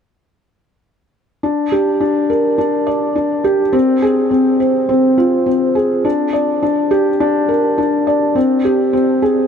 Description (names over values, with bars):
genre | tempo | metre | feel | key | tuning
electronica | 104 BPM | 4/4 | straight | unclear | A4 = 440 Hz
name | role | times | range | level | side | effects
felt-muted upright piano | solo | 1.4-9.5 s | C4 to D5 | -12 LUFS | equal | none
room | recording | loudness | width
moderate huge ambient reverb, RT60 7.7 s | none | -13 LUFS | side -7 dB against mid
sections
1.4-9.5 A section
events
none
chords
none